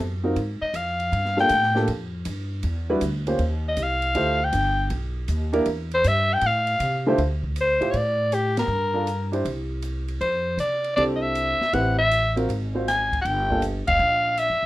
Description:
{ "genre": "jazz, small-group swing and bop", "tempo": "158 BPM", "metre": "4/4", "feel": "swing 66% on 8ths", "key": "D minor", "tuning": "A4 = 440 Hz", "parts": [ { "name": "upright bass", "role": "bass", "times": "0.0-14.7 s", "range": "F1 to C3", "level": "-27 LUFS", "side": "equal", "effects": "none" }, { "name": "warm baby grand piano", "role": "accompaniment", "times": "0.2-13.6 s", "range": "D3 to C5", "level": "-25 LUFS", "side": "right 1 dB", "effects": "none" }, { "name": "open jazz drum kit", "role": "drums", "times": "0.4-14.5 s", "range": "hi-hat, kick drum, ride cymbal, snare drum", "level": "-36 LUFS", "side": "right 1 dB", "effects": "none" }, { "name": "growling soprano saxophone", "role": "melody", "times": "0.6-14.7 s", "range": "G4 to G#5", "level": "-22 LUFS", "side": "left 1 dB", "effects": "none" } ], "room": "moderate studio reverb, RT60 0.5 s", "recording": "rough home demo mix", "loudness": "-21 LUFS", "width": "side -16 dB against mid", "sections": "0.0-7.2 A section; 7.2-14.7 B section", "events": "soprano saxophone solo 0.0-7.2; band accent 8.5, 13.8", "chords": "0.4 Fm7; 1.1 Gm9; 2.6 Em7; 3.4 Ebsus2; 4.2 Dm11; 4.9 B; 5.7 Em; 6.4 Am7; 7.2 D7(no3); 8.7 Gm7; 9.5 N.C.; 10.2 F69; 11.7 Am9; 12.5 G#6; 13.2 Gm7" }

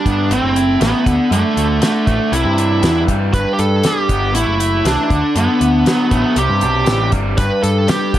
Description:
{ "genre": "classic rock", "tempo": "119 BPM", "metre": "4/4", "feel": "straight", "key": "G major", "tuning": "A4 = 440 Hz", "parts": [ { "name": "bluesy overdriven lead guitar", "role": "melody", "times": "0.0-8.2 s", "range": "A3 to B4", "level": "-16 LUFS", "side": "right 2 dB", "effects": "distortion, tape echo" }, { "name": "raw garage guitar", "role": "riff", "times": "0.0-8.2 s", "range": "G2 to E4", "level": "-20 LUFS", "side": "left 1 dB", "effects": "overdrive" }, { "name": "growling picked electric bass", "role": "bass", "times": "0.1-8.2 s", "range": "F#1 to G2", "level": "-18 LUFS", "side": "equal", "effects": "overdrive" }, { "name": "damped 70s drum kit", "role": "drums", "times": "0.1-8.2 s", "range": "hi-hat, kick drum, snare drum", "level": "-19 LUFS", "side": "equal", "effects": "none" }, { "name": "clear upright piano", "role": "accompaniment", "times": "7.4-8.2 s", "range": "D4 to B4", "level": "-27 LUFS", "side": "left 3 dB", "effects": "none" } ], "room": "light reverb, studio ambience", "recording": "none", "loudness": "-13 LUFS", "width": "side -12 dB against mid", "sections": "0.0-8.2 A section", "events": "none", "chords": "0.3 Am; 1.1 D5; 2.3 Cadd9; 3.3 G; 4.3 Am; 5.1 D; 6.4 Cadd9; 7.4 G" }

